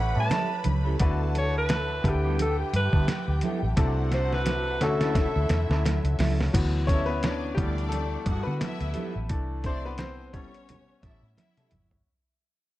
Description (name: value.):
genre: lush 1970s-style soul.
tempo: 87 BPM.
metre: 4/4.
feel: swing 58% on 16ths.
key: D major.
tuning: A4 = 440 Hz.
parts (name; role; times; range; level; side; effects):
clear alto saxophone; melody; 0.0-6.2 s; G4 to A5; -30 LUFS; equal; analog delay.
rich studio string section; second line; 0.0-11.9 s; C4 to B5; -37 LUFS; left 1 dB; none.
bright baby grand piano; accompaniment; 0.0-12.1 s; C3 to C#5; -33 LUFS; left 3 dB; none.
vintage muted fingered electric bass; bass; 0.0-12.0 s; G1 to D3; -27 LUFS; equal; none.
electric guitar through a small old amp; riff; 0.2-12.0 s; F#3 to B4; -38 LUFS; right 2 dB; phaser.
lo-fi sampler-style drum kit; drums; 0.3-12.1 s; crash cymbal, hi-hat, kick drum, snare drum, toms; -28 LUFS; equal; none.
congas; percussion; 0.3-11.9 s; none; -35 LUFS; right 5 dB; none.
room: studio ambience.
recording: dark, warm production.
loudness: -24 LUFS.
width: side -16 dB against mid.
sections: 0.0-6.5 A section; 6.5-12.1 B section.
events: drum fill 3.8-6.5, 11.4-12.1; fade-out 6.5-12.1; grand piano solo 6.5-12.1.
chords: 0.0 A7; 1.0 D6; 2.0 G69/D; 3.8 C69; 4.8 Dmaj9; 6.5 D6; 7.6 G69/D; 9.3 C69; 10.3 A7.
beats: 0.31 | 1.00 1.69 2.38 3.08 | 3.77 4.46 5.15 5.85 | 6.54 7.23 7.92 8.61 | 9.30 10.00 10.69 11.38.